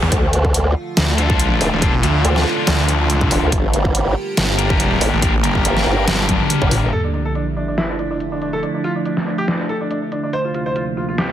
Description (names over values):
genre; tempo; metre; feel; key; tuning
heavy wobble dubstep; 141 BPM; 4/4; swing 54% on 16ths, half-time; D minor; A4 = 440 Hz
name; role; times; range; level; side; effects
snarling distorted saw bass; bass; 0.0-6.4 s; E1 to E2; -18 LUFS; equal; distortion, overdrive
zap and sub drop; sound effects; 0.0, 6.9-8.6 s; none; -26 LUFS; equal; none
evolving wavetable pad; sustained chords; 0.1-11.3 s; D2 to G4; -24 LUFS; right 2 dB; phaser, built-in reverb, sidechain pumping
formant-sweep wobble bass; bass; 0.1-6.9 s; E1 to D2; -17 LUFS; equal; chorus, overdrive
dubstep drum kit; drums; 0.1-11.3 s; hi-hat, snare drum, toms; -20 LUFS; equal; overdrive, low-pass filter on hats, low-pass filter on snare, low-pass filter on toms, low-pass filter on room
electronic kick drum; drums; 0.1-6.7 s; none; -20 LUFS; equal; overdrive
sludgy distorted guitar; stabs; 1.2-6.9 s; D4 to Bb4; -21 LUFS; left 3 dB; overdrive, ping-pong delay
clear grand piano; melody; 6.9-11.3 s; D4 to C5; -23 LUFS; equal; ping-pong delay
room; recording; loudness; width
light reverb; heavily compressed radio sound; -15 LUFS; side -11 dB against mid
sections
0.0-6.9 A section; 6.9-11.3 B section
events
drop 0.0-6.9; drum fill 6.1-6.9; impact 6.9-8.6; filter sweep on ambient pad 6.9-11.3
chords
0.1 Dm; 3.5 Gm; 6.9 Dmadd9; 10.3 Bbadd9/D